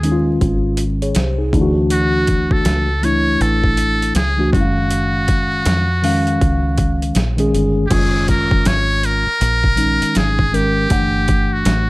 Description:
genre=hip hop, jazz-hop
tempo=80 BPM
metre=4/4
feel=swing 62% on 16ths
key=unclear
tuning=A4 = 439 Hz
part: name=trumpet with metal mute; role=melody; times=0.0-11.9 s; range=F#4 to C#5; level=-19 LUFS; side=equal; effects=none
part: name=mellow tine electric piano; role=accompaniment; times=0.0-11.9 s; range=Eb3 to F#5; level=-18 LUFS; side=left 1 dB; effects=medium stereo tremolo
part: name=deep dub fingered electric bass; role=bass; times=0.0-11.9 s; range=Gb1 to F2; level=-19 LUFS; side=equal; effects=none
part: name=boom bap sampler-style drum kit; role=drums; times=0.0-11.9 s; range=crash cymbal, hi-hat, kick drum, snare drum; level=-19 LUFS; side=equal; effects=overdrive
room=little or no reverb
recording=vinyl crackle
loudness=-14 LUFS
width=side -21 dB against mid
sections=0.0-7.9 A section; 7.9-11.9 B section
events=none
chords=0.0 Dbmaj9; 1.5 Dmaj9; 4.5 Gbmaj7sus2; 7.9 F#maj9; 10.9 Gsus2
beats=0.41 1.16 | 1.91 2.66 3.41 4.16 | 4.91 5.66 6.41 7.16 | 7.91 8.66 9.41 10.16 | 10.91 11.66

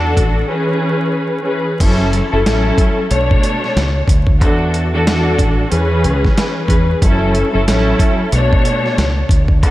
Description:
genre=hip hop, boom-bap hip-hop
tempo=92 BPM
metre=4/4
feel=swing 61% on 16ths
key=F# minor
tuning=A4 = 440 Hz
part: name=warm studio string section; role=accompaniment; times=0.0-9.7 s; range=B2 to C#5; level=-16 LUFS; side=equal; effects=cassette tape, high-pass filter, low-pass filter
part: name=deep dub fingered electric bass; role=bass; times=0.0-9.7 s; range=F#1 to E2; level=-17 LUFS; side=equal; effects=none
part: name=dusty soul sampler-style drum kit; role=drums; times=0.2-9.7 s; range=crash cymbal, hi-hat, kick drum, snare drum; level=-15 LUFS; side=equal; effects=overdrive
room=light reverb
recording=vinyl crackle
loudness=-12 LUFS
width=side -16 dB against mid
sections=0.0-1.8 A section; 1.8-9.7 B section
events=break 0.5-1.8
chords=0.5 C#m7/E; 1.8 F#m7; 3.1 Bm9; 4.4 E9sus4; 5.7 C#m7; 7.0 F#m7; 8.3 Bm9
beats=0.50 1.15 | 1.80 2.45 3.11 3.76 | 4.41 5.06 5.71 6.37 | 7.02 7.67 8.32 8.98 | 9.63

